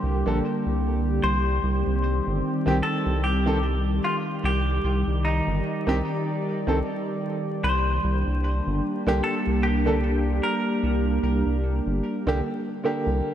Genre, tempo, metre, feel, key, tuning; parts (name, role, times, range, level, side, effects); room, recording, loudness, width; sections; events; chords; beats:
trip hop; 75 BPM; 4/4; swing 57% on 16ths; C minor; A4 = 440 Hz
semi-hollow electric guitar; melody; 0.0-13.2 s; Eb4 to C5; -30 LUFS; left 1 dB; vintage 12-bit sampler grit, tape echo
warbly tape-like pad; sustained chords; 0.0-13.3 s; D3 to D5; -27 LUFS; equal; chorus, built-in reverb
round analog bass; bass; 0.0-13.2 s; G1 to C2; -24 LUFS; equal; tube saturation
bright upright piano; accompaniment; 0.3-13.3 s; D3 to A4; -28 LUFS; right 1 dB; tremolo, tape echo
moderate lush hall reverb, RT60 3.1 s; dreamy mix soaked in reverb, vinyl crackle; -22 LUFS; side -10 dB against mid
0.0-13.3 A section
0.0 Gm; 1.2 Cm; 7.6 Gm
0.43 | 1.23 2.03 2.83 3.63 | 4.43 5.23 6.03 6.83 | 7.63 8.43 9.23 10.03 | 10.83 11.63 12.43 13.23